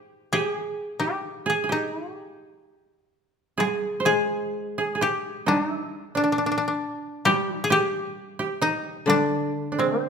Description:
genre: japanese traditional, Japanese chamber music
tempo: 65 BPM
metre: 2/4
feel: rubato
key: G miyako bushi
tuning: A4 = 440 Hz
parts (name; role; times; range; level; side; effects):
- koto; melody; 0.0-10.1 s; C4 to D5; -25 LUFS; left 2 dB; none
- koto; second line; 0.0-10.1 s; C4 to D5; -27 LUFS; right 4 dB; none
- taiko ensemble; percussion; 3.6-9.3 s; none; -31 LUFS; right 1 dB; none
- koto; accompaniment; 4.1-10.1 s; D3 to Ab3; -29 LUFS; left 5 dB; none
room: moderate recital hall reverb, RT60 1.5 s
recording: minimal, uncompressed stereo recording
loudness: -23 LUFS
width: side -6 dB against mid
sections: 0.0-3.6 A section; 3.6-10.1 B section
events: none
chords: none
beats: 0.78 | 1.70 2.63 | 3.59 4.55 | 5.48 6.38 | 7.27 8.17 | 9.09 10.02

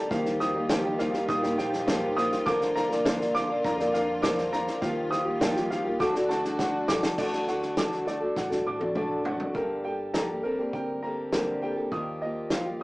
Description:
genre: indie folk with a building arrangement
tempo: 102 BPM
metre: 4/4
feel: straight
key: G minor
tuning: A4 = 440 Hz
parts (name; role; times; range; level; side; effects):
- picked acoustic archtop guitar; accompaniment; 0.0-12.8 s; G2 to Bb4; -28 LUFS; equal; none
- warm chamber string section; sustained chords; 0.0-7.2 s; D3 to F#4; -33 LUFS; equal; none
- warm upright piano; arpeggios; 0.0-12.8 s; Bb4 to Eb6; -32 LUFS; right 1 dB; none
- hollow-body short-scale fingered electric bass; bass; 0.1-12.8 s; G1 to F#2; -45 LUFS; equal; none
- natural country drum kit; drums; 0.1-12.6 s; crash cymbal, kick drum, snare drum, toms; -31 LUFS; equal; none
- fingerpicked plugged-in steel-string acoustic guitar; accompaniment; 7.2-12.8 s; G2 to C5; -36 LUFS; equal; none
room: moderate studio ambience, RT60 0.5 s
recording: rough rehearsal-room recording, small speaker sound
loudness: -25 LUFS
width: side -21 dB against mid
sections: 0.0-7.2 A section; 7.2-9.5 B section; 9.5-12.8 C section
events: drum fill 6.6-7.2, 8.4-9.5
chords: 0.1 Ebadd9; 2.5 Bb/D; 4.8 Ebadd9; 6.0 D; 9.5 Gmadd9; 11.9 Ebadd9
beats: | 0.11 0.70 1.29 1.88 | 2.46 3.05 3.64 4.23 | 4.82 5.41 6.00 6.59 | 7.18 7.77 8.37 8.96 | 9.55 10.14 10.73 11.32 | 11.92 12.51

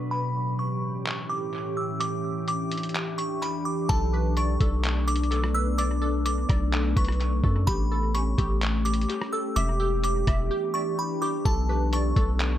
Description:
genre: hip hop, atmospheric cloud-rap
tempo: 127 BPM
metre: 4/4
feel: half-time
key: B minor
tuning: A4 = 440 Hz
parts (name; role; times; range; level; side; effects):
- delicate synth tine bell; melody; 0.0-12.6 s; A5 to E6; -31 LUFS; equal; chorus, low-pass filter, analog delay
- glassy FM pad; sustained chords; 0.0-12.6 s; E2 to G4; -30 LUFS; equal; ensemble chorus, built-in reverb, sidechain pumping, low-pass filter
- lo-fi sampler-style drum kit; drums; 1.1-12.5 s; handclaps, hi-hat, kick drum, rim click; -28 LUFS; equal; analog delay
- glassy wavetable pluck; arpeggios; 3.9-12.6 s; C#4 to E5; -34 LUFS; left 2 dB; chorus, analog delay
- long sustained 808-style bass; bass; 3.9-12.6 s; E1 to F#2; -25 LUFS; equal; none
room: digital ambience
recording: echo-heavy mix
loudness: -23 LUFS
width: side -12 dB against mid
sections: 0.0-3.9 A section; 3.9-12.6 B section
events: filter sweep 0.0-3.9; break 10.5-11.5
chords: 0.1 A7; 2.0 Em7; 3.9 Bm7; 7.7 A7; 9.6 Em7; 11.5 Bm7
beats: | 0.12 0.59 1.06 1.53 | 2.01 2.48 2.95 3.42 | 3.90 4.37 4.84 5.31 | 5.79 6.26 6.73 7.20 | 7.68 8.15 8.62 9.09 | 9.57 10.04 10.51 10.98 | 11.46 11.93 12.40

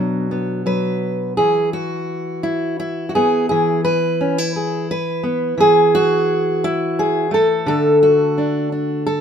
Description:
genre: folk, solo fingerstyle acoustic guitar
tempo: 86 BPM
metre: 3/4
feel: rubato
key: unclear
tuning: A4 = 442 Hz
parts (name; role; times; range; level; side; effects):
- fingerpicked steel-string acoustic guitar; solo; 0.0-9.2 s; B2 to B4; -16 LUFS; equal; none
room: light reverb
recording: minimal, uncompressed stereo recording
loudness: -15 LUFS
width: side -8 dB against mid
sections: 0.0-1.4 A section; 1.4-9.2 B section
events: none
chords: 0.0 Bm; 1.4 E; 5.6 A5/E; 7.7 D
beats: 0.68 | 1.41 2.12 2.83 | 3.52 4.21 4.90 | 5.59 6.27 6.97 | 7.67 8.37 9.08

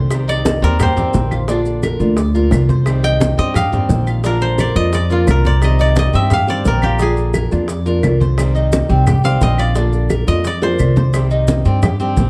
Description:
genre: latin, Cuban son and guajira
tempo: 174 BPM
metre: 4/4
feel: straight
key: C minor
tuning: A4 = 440 Hz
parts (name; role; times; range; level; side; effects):
- koto; melody; 0.0-12.3 s; F4 to G5; -24 LUFS; equal; plate reverb
- nylon-string guitar; accompaniment; 0.0-12.3 s; C3 to G4; -25 LUFS; equal; none
- Cuban tres; arpeggios; 0.0-12.3 s; C4 to D5; -25 LUFS; equal; none
- upright bass; bass; 0.0-12.3 s; Bb1 to G2; -18 LUFS; equal; none
- bongos; percussion; 0.1-12.3 s; none; -28 LUFS; equal; none
- claves; percussion; 0.1-12.0 s; none; -34 LUFS; equal; none
- congas; percussion; 0.1-12.3 s; none; -22 LUFS; equal; none
- maracas; percussion; 0.1-12.3 s; none; -39 LUFS; equal; none
room: light reverb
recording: dark, warm production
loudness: -15 LUFS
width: mono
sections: 0.0-11.1 A section; 11.1-12.3 B section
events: koto solo 0.0-11.1; drum fill 10.6-11.1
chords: 0.1 Cm; 1.5 Bb; 2.9 Cm; 4.2 Bb; 5.6 Cm; 7.0 Bb; 8.4 Cm; 9.8 Bb; 11.1 Cm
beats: | 0.11 0.46 0.80 1.15 | 1.49 1.83 2.18 2.52 | 2.87 3.21 3.56 3.90 | 4.24 4.59 4.93 5.28 | 5.62 5.97 6.31 6.66 | 7.00 7.34 7.69 8.03 | 8.38 8.72 9.07 9.41 | 9.76 10.10 10.45 10.79 | 11.13 11.48 11.82 12.17

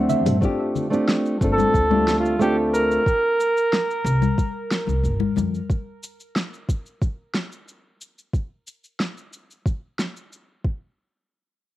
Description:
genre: sunset chillout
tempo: 91 BPM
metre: 4/4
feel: straight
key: G minor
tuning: A4 = 440 Hz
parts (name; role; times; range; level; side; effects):
- nylon-string guitar; accompaniment; 0.0-3.0 s; A3 to F#5; -21 LUFS; equal; auto-pan, cassette tape, tape echo
- upright bass; bass; 0.0-5.6 s; G1 to G2; -24 LUFS; equal; tube saturation
- deep house drum kit; drums; 0.1-10.5 s; cabasa, hi-hat, snare drum, toms; -27 LUFS; equal; cassette tape
- congas and bongos; percussion; 0.1-5.5 s; none; -26 LUFS; left 7 dB; none
- electronic kick drum; drums; 0.4-10.8 s; none; -22 LUFS; equal; cassette tape
- warm flugelhorn; melody; 1.5-5.3 s; F4 to Bb4; -22 LUFS; right 1 dB; cassette tape, tape echo
room: moderate spring reverb, RT60 1.6 s, studio ambience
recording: home recording on cassette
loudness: -20 LUFS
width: side -15 dB against mid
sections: 0.4-11.0 A section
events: drum fill 0.0-0.4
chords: 0.4 G9sus4; 3.1 C5; 5.4 N.C.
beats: | 0.42 1.08 1.74 2.40 | 3.06 3.72 4.38 5.04 | 5.70 6.36 7.01 7.67 | 8.33 8.99 9.65 10.31

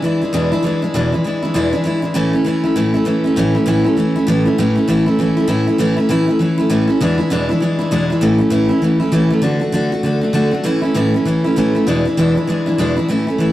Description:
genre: rock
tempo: 198 BPM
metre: 4/4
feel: swing 60% on 8ths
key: A major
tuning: A4 = 438 Hz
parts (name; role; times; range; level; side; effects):
- picked steel-string acoustic guitar; solo; 0.0-13.5 s; E2 to F#4; -13 LUFS; equal; none
room: moderate stone room reverb, RT60 1.1 s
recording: rough rehearsal-room recording, warm saturation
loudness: -13 LUFS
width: side -14 dB against mid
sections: 0.0-3.4 A section; 3.4-13.1 B section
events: none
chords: 0.0 E7; 2.2 A; 7.0 E7; 8.2 A; 9.4 D; 10.7 A; 11.9 E7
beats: 0.04 0.34 0.64 | 0.95 1.25 1.55 1.86 | 2.16 2.46 2.77 3.07 | 3.38 3.68 3.98 4.28 | 4.59 4.89 5.19 5.49 | 5.80 6.10 6.40 6.70 | 7.01 7.31 7.61 7.92 | 8.22 8.52 8.83 9.13 | 9.43 9.74 10.04 10.35 | 10.65 10.95 11.26 11.56 | 11.87 12.17 12.48 12.78 | 13.09 13.39

